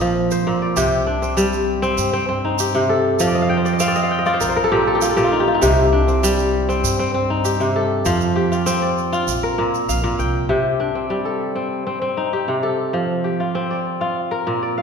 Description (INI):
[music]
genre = west african traditional, West African string and xylophone music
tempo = 99 BPM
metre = 4/4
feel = straight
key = C dorian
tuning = A4 = 440 Hz
[part]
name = kora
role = arpeggios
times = 0.0-14.8 s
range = Bb2 to G5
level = -17 LUFS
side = equal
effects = none
[part]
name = upright bass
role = bass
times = 0.0-10.5 s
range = Bb1 to G2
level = -25 LUFS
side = equal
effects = none
[part]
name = tube shaker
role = percussion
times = 0.0-10.3 s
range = none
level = -29 LUFS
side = right 8 dB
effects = none
[sound]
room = wet scoring stage reverb, RT60 1.6 s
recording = recorded in a church or concert hall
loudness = -17 LUFS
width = side -6 dB against mid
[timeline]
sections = 0.8-10.5 A section; 10.5-14.8 B section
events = kora fill 3.3-5.6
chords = 0.0 Bb; 0.8 Cm; 3.2 F; 4.4 Gm11/Bb; 5.6 Cm; 8.1 F; 9.3 Bb5; 10.5 Cm; 12.9 F; 14.2 Bb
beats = 0.16 | 0.76 1.37 1.98 2.59 | 3.20 3.80 4.41 5.02 | 5.63 6.23 6.84 7.45 | 8.06 8.67 9.28 9.88 | 10.50 11.11 11.72 12.33 | 12.94 13.56 14.17 14.78